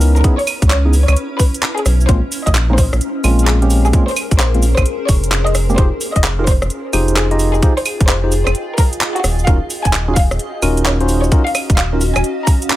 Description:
UK garage, two-step garage; 130 BPM; 4/4; swing 65% on 16ths; F phrygian; A4 = 440 Hz
bright tine electric piano; stabs; 0.0-12.0 s; Ab3 to Eb5; -20 LUFS; equal; medium stereo tremolo, dub echo
rubbery square bass; bass; 0.0-12.2 s; Eb1 to Db2; -15 LUFS; equal; sidechain pumping
garage drum kit; drums; 0.0-12.8 s; claves, handclaps, hi-hat, rim click, shaker; -20 LUFS; right 1 dB; studio ambience
granular cloud pad; texture; 0.0-12.8 s; Db4 to G5; -25 LUFS; equal; built-in reverb, sidechain pumping
clear studio violin section; melody; 0.2-12.6 s; Gb4 to Bb5; -23 LUFS; equal; dub echo
electronic kick drum; drums; 0.2-12.6 s; -13 LUFS; equal; overdrive, studio ambience
little or no reverb; -12 LUFS; side -15 dB against mid
0.0-12.8 A section
0.0 Dbm9; 2.1 Bbm9; 5.8 Fm9; 9.2 Ebm9

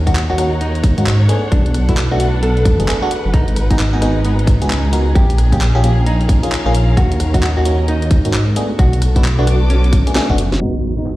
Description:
UK garage, two-step garage; 132 BPM; 4/4; swing 63% on 16ths; G# dorian; A4 = 441 Hz
dark detuned saw bass; bass; 0.0-10.6 s; F#1 to G#2; -15 LUFS; equal
dark symphonic string section; texture; 0.0-11.2 s; B3 to D6; -27 LUFS; left 1 dB; sidechain pumping
nylon-string guitar; melody; 0.1-11.1 s; B3 to A4; -23 LUFS; equal; vintage 12-bit sampler grit, digital delay
FM electric piano; stabs; 0.1-11.2 s; G#3 to A#4; -22 LUFS; equal; chorus, phaser, digital delay
electronic kick drum; drums; 0.1-10.4 s; -13 LUFS; equal
garage drum kit; drums; 0.1-11.2 s; handclaps, hi-hat, rim click, snare drum; -23 LUFS; equal
impact; sound effects; 10.6-11.2 s; -21 LUFS; equal
digital ambience; played on a big sound system in a bare room, stone room reverb, low-pass filter; -12 LUFS; side -17 dB against mid
0.0-10.6 A section
drum fill 10.2-10.6; impact 10.6-11.2
0.0 D#m7; 1.3 Bm7; 3.3 G#m7; 5.2 A#m7; 7.0 D#m7; 8.6 Bm7; 10.6 G#m7

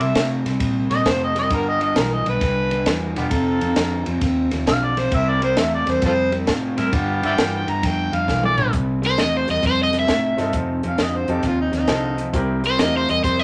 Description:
electric blues shuffle; 133 BPM; 4/4; swing 67% on 8ths; A4 = 440 Hz
overdriven harmonica; second line; 0.0-12.3 s; Eb4 to Bb5; -24 LUFS; equal
electric guitar through a small old amp; riff; 0.0-13.4 s; F2 to A3; -26 LUFS; equal
mellow saxophone section; stabs; 0.0-7.7 s; B3 to Bb4; -29 LUFS; equal
vintage muted fingered electric bass; bass; 0.0-13.4 s; E1 to C3; -29 LUFS; equal
compact cocktail drum kit; drums; 0.0-13.4 s; hi-hat, kick drum, ride cymbal, snare drum, toms; -26 LUFS; equal
overdriven semi-hollow guitar; melody; 9.1-13.4 s; C5 to E5; -22 LUFS; equal
bright upright piano; accompaniment; 10.4-13.1 s; C4 to Bb4; -29 LUFS; equal
light reverb; -20 LUFS; mono
0.0-8.7 A section; 8.7-13.4 B section
harmonica solo 0.0-8.7; drum fill 8.3-8.7
0.0 C7(no3); 1.5 G7; 3.3 F7; 5.1 C7; 6.9 G7; 8.7 C; 10.5 F7; 12.3 C7

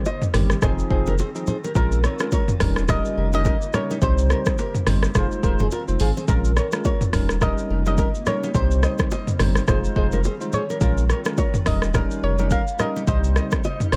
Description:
afrobeats; 106 BPM; 4/4; swing 58% on 16ths; A4 = 444 Hz
soft round pluck; melody; 0.0-14.0 s; Bb4 to F5; -32 LUFS; equal; chorus, tape echo
granular cloud pad; sustained chords; 0.1-14.0 s; C3 to F4; -38 LUFS; equal
nylon-string guitar; riff; 0.1-13.8 s; Eb4 to Eb5; -33 LUFS; equal; tape echo
deep house drum kit; drums; 0.1-14.0 s; hi-hat, kick drum, rim click, shaker, toms; -25 LUFS; equal
bongos and congas; percussion; 0.1-13.8 s; -30 LUFS; equal
barky tine electric piano; accompaniment; 0.3-14.0 s; Eb3 to C5; -30 LUFS; equal; analog chorus
warm sub bass; bass; 0.3-14.0 s; Eb1 to C2; -24 LUFS; equal
little or no reverb; -21 LUFS; mono
0.0-14.0 A section
0.0 Cm; 0.6 Fm7; 1.8 Bbm7; 2.6 Eb7; 4.0 Cm; 5.2 Fm7; 6.3 Bbm7; 7.1 Eb7; 8.5 Cm; 9.7 Fm7; 10.8 Bbm7; 11.7 Eb7; 13.1 Cm

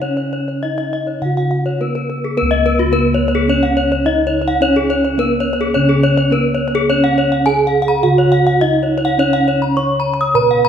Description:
Balinese gamelan; 106 BPM; 4/4; straight; Db slendro; A4 = 440 Hz
gamelan-type bronze metallophone; melody; 0.0-10.7 s; Cb4-45c to Db5; -17 LUFS; right 3 dB
gamelan-type bronze metallophone; arpeggios; 0.0-10.7 s; Gb4-35c to Eb6+30c; -16 LUFS; left 3 dB
gamelan-type bossed gongs; bass; 0.0-10.7 s; Db2 to Cb5-45c; -20 LUFS; left 1 dB
wet recital hall reverb, RT60 1.5 s; recorded in a church or concert hall; -13 LUFS; side -8 dB against mid
0.0-2.4 A section; 2.4-10.7 B section

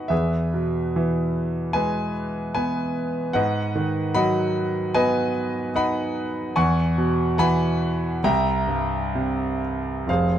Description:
classical, lyrical solo piano; 74 BPM; 4/4; rubato; E major; A4 = 442 Hz
bright concert grand piano; solo; 0.0-10.4 s; F1 to C#6; -21 LUFS; equal
moderate studio reverb, RT60 0.6 s; dark, warm production; -21 LUFS; side -10 dB against mid
0.0-10.1 A section
0.1 E; 3.4 G#m7; 6.6 Eadd9; 8.2 C7

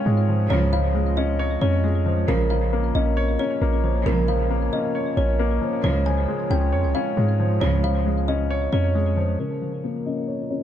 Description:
hip hop; 135 BPM; 4/4; half-time; Bb minor; A4 = 440 Hz
kalimba; melody; 0.0-10.6 s; Bb4 to Ab5; -27 LUFS; equal; low-pass filter, tape echo
dark baby grand piano; accompaniment; 0.0-10.6 s; Db3 to Db5; -26 LUFS; left 4 dB; low-pass filter, tape echo
dark analog pad; sustained chords; 0.0-10.6 s; Ab3 to Eb5; -31 LUFS; right 2 dB; chorus, low-pass filter
warm 808-style bass; bass; 0.1-9.4 s; Bb1 to Ab2; -22 LUFS; right 1 dB
warm studio string section; stabs; 0.5-8.0 s; Db2 to F3; -30 LUFS; right 3 dB; tape echo
small room ambience; echo-heavy mix; -20 LUFS; side -10 dB against mid
0.0-9.4 A section; 9.4-10.6 B section
filter sweep 9.4-10.6
0.0 Db; 2.3 Bbm; 5.8 Db; 9.4 Bbm

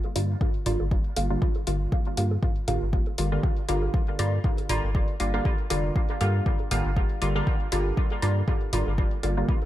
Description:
dub techno; 119 BPM; 4/4; swing 55% on 16ths; G minor; A4 = 445 Hz
electronic bongos and toms; percussion; 0.0-9.7 s; -36 LUFS; right 3 dB; sidechain pumping on perc, sidechain pumping on toms, dub echo
filtered dub chord stab; stabs; 0.2-9.6 s; D3 to F4; -28 LUFS; equal; chorus, phaser, cassette tape, sidechain pumping, dub echo
soft dub sub bass; bass; 0.2-9.4 s; F1 to G2; -27 LUFS; equal; sidechain pumping
electronic hi-hat; drums; 0.2-9.3 s; -34 LUFS; left 3 dB; overdrive
electronic kick drum; drums; 0.4-9.6 s; -25 LUFS; equal; overdrive
little or no reverb; -23 LUFS; side -13 dB against mid
0.0-9.7 A section
0.0 Gm7

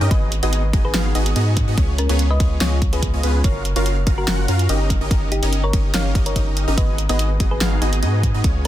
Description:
future bass; 144 BPM; 4/4; half-time; A4 = 441 Hz
supersaw stab; riff; 0.0-8.6 s; B3 to F#5; -24 LUFS; equal; sidechain pumping
saturated sub bass; bass; 0.0-8.7 s; F#1 to G#2; -20 LUFS; equal; sidechain pumping
thumb-piano-like synth pluck; melody; 0.1-8.7 s; C#4 to E#5; -28 LUFS; left 1 dB; chorus, sidechain pumping, dub echo
electronic kick drum; drums; 0.1-8.5 s; -19 LUFS; equal
pop drum kit; drums; 0.1-8.7 s; hi-hat, snare drum; -25 LUFS; left 1 dB
little or no reverb; dense, heavily limited modern master; -16 LUFS; side -13 dB against mid
0.0-8.7 A section
0.1 G#m7; 1.8 C#7; 3.4 F#maj7; 4.9 D#7/G; 6.8 G#m7

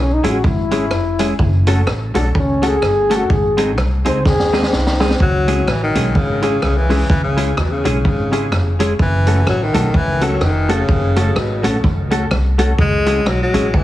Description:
ska; 126 BPM; 4/4; swing 58% on 8ths; C# minor; A4 = 439 Hz
breathy trombone; melody; 0.0-5.2 s; C#4 to B#4; -19 LUFS; left 2 dB
upright bass; bass; 0.0-13.8 s; E#1 to E2; -18 LUFS; equal
semi-hollow electric guitar; accompaniment; 0.2-13.7 s; G#3 to A4; -23 LUFS; right 2 dB; tape echo
honky-tonk upright piano; stabs; 0.2-13.7 s; B#3 to A4; -24 LUFS; left 4 dB; tape echo
street-band drum kit; drums; 0.2-13.8 s; hi-hat, kick drum, rim click, snare drum; -19 LUFS; equal
breathy tenor saxophone; melody; 5.2-13.8 s; B2 to G#3; -20 LUFS; left 2 dB; tape echo
light reverb, small room ambience; heavily compressed radio sound, multiband compression; -13 LUFS; side -14 dB against mid
0.0-5.2 A section; 5.2-13.8 B section
trombone solo 0.0-5.2; drum fill 4.3-5.2
0.0 C#m; 1.4 F#m; 3.3 G#; 5.2 C#m; 9.0 F#m; 12.8 C#m

